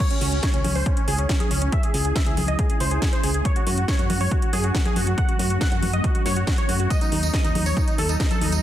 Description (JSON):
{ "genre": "uplifting trance", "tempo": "139 BPM", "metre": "4/4", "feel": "straight", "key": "C# minor", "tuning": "A4 = 440 Hz", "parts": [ { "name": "supersaw chords", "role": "melody", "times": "0.0-8.6 s", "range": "C#4 to F#5", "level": "-27 LUFS", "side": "equal", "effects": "sidechain pumping, low-pass filter, digital delay" }, { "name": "shimmering ambient pad", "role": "sustained chords", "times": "0.0-8.6 s", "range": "F#3 to E4", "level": "-32 LUFS", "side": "right 1 dB", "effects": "chorus, built-in reverb, sidechain pumping" }, { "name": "electronic kick drum", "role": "drums", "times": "0.0-8.3 s", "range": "none", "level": "-23 LUFS", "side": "equal", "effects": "overdrive" }, { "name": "house drum kit", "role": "drums", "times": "0.0-8.6 s", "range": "congas, crash cymbal, hi-hat, snare drum, tambourine", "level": "-28 LUFS", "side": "left 1 dB", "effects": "overdrive" }, { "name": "solid FM bass", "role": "bass", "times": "0.2-8.6 s", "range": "C#2 to F#2", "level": "-24 LUFS", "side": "equal", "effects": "sidechain pumping" } ], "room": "little or no reverb", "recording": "dense, heavily limited modern master", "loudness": "-19 LUFS", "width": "side -12 dB against mid", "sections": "0.0-8.6 A section", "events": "filter sweep on ambient pad 0.0-8.6", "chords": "0.0 C#m; 3.5 F#m; 6.9 D#dim" }